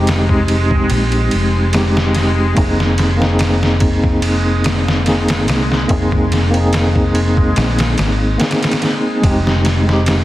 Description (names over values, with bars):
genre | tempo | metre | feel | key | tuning
trip hop | 72 BPM | 4/4 | swing 54% on 16ths | unclear | A4 = 440 Hz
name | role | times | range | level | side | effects
mellow tine electric piano | accompaniment | 0.0-10.2 s | Ab3 to Ab4 | -17 LUFS | equal | tremolo, tape echo
deep dub fingered electric bass | bass | 0.0-10.2 s | F1 to C2 | -16 LUFS | equal | none
backwards swelling texture | texture | 0.0-10.2 s | Ab3 to Eb4 | -25 LUFS | equal | built-in reverb
trip hop sampler-style drum kit | drums | 0.1-10.2 s | kick drum, ride cymbal, snare drum | -18 LUFS | equal | none
room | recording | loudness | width
little or no reverb | heavily compressed radio sound, multiband compression, vinyl crackle | -12 LUFS | side -15 dB against mid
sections
0.0-10.2 A section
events
none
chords
0.0 Fm9; 2.6 Abadd9/F; 9.2 Fm9